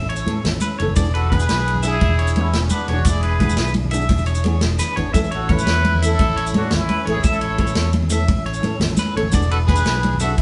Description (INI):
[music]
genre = highlife guitar band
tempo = 115 BPM (dotted quarters)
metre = 12/8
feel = straight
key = A major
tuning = A4 = 440 Hz
[part]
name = tonewheel organ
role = sustained chords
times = 0.0-10.4 s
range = C#4 to A4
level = -36 LUFS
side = equal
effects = slow rotary speaker
[part]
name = electric guitar at the edge of break-up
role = arpeggios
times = 0.0-10.4 s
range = B4 to E5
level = -29 LUFS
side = equal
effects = tremolo
[part]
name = fingered electric bass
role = bass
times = 0.0-10.4 s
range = E1 to A2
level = -24 LUFS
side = equal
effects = none
[part]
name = congas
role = percussion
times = 0.0-10.2 s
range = none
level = -26 LUFS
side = equal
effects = none
[part]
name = vintage drum kit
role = drums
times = 0.1-10.4 s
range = kick drum, ride cymbal, snare drum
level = -25 LUFS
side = equal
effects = none
[part]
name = maracas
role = percussion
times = 0.2-10.3 s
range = none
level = -35 LUFS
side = equal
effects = none
[part]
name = flamenco guitar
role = accompaniment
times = 0.3-10.3 s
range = E3 to A4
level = -29 LUFS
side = equal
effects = none
[part]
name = trumpet with plunger mute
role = melody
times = 1.1-10.4 s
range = D4 to B4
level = -26 LUFS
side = equal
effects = none
[part]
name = growling trumpet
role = second line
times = 1.2-10.4 s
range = B3 to G#4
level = -33 LUFS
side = equal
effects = none
[sound]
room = moderate stone room reverb, RT60 1.1 s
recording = band playing live in one room, nothing above 11.0 kHz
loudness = -19 LUFS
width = mono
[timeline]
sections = 0.0-10.4 A section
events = drum fill 4.6-5.1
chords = 0.0 A; 1.0 E7; 5.1 A; 9.3 E7